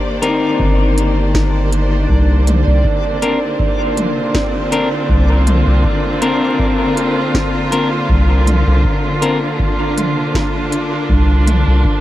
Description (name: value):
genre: ambient dub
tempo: 80 BPM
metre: 4/4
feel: swing 53% on 16ths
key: unclear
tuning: A4 = 440 Hz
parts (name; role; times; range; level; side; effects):
- rich studio string section; sustained chords; 0.0-12.0 s; D3 to D5; -19 LUFS; equal; none
- backwards swelling texture; texture; 0.0-12.0 s; D4 to D5; -27 LUFS; left 1 dB; built-in reverb
- clean electric guitar; stabs; 0.2-9.4 s; C4 to Bb4; -20 LUFS; left 3 dB; dub echo
- organic electronic drum kit; drums; 0.2-11.6 s; hi-hat, snare drum, toms; -23 LUFS; equal; overdrive, dub echo
- vibraphone with medium mallets; arpeggios; 0.3-12.0 s; D4 to D5; -24 LUFS; right 2 dB; dub echo
- soft dub sub bass; bass; 0.6-11.8 s; G1 to C2; -12 LUFS; equal; none
- electronic kick drum; drums; 0.6-12.0 s; none; -20 LUFS; equal; none
room: light reverb, digital ambience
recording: vinyl crackle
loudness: -12 LUFS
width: side -14 dB against mid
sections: 0.0-12.0 A section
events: none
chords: 0.0 Cm7; 2.1 Bbadd9/C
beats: 0.60 1.35 | 2.10 2.85 3.60 4.35 | 5.10 5.85 6.60 7.35 | 8.10 8.85 9.60 10.35 | 11.10 11.85